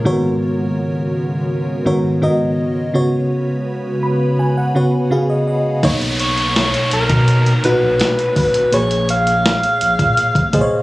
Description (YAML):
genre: contemporary R&B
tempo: 83 BPM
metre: 4/4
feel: straight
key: unclear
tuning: A4 = 437 Hz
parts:
  - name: FM electric piano with soft pad layer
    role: accompaniment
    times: 0.0-10.8 s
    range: G#2 to B5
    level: -17 LUFS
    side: equal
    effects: chorus, tremolo
  - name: glassy FM pad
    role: sustained chords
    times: 0.0-5.8 s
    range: C#3 to B4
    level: -24 LUFS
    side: left 1 dB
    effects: ensemble chorus, built-in reverb
  - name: downlifter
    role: sound effects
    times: 0.0, 5.8-10.8 s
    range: none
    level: -24 LUFS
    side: equal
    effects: none
  - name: saturated sub bass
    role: bass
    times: 5.8-10.6 s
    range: E#1 to B2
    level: -20 LUFS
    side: equal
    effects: none
  - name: dusty soul sampler-style drum kit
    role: drums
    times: 5.8-10.7 s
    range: hi-hat, kick drum, snare drum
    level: -19 LUFS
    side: equal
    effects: vintage 12-bit sampler grit
  - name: mellow alto saxophone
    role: melody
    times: 6.2-10.8 s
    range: A#4 to E#5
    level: -16 LUFS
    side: equal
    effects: digital delay
room: little or no reverb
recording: recorded on a phone in the room, club reverb, compression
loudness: -14 LUFS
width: side -18 dB against mid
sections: 0.0-5.8 A section; 5.8-10.8 B section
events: FM electric piano fill 3.7-5.8, 10.2-10.8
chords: 0.0 G#m11; 2.9 C#7sus4; 5.8 Bmaj9; 8.7 A#m7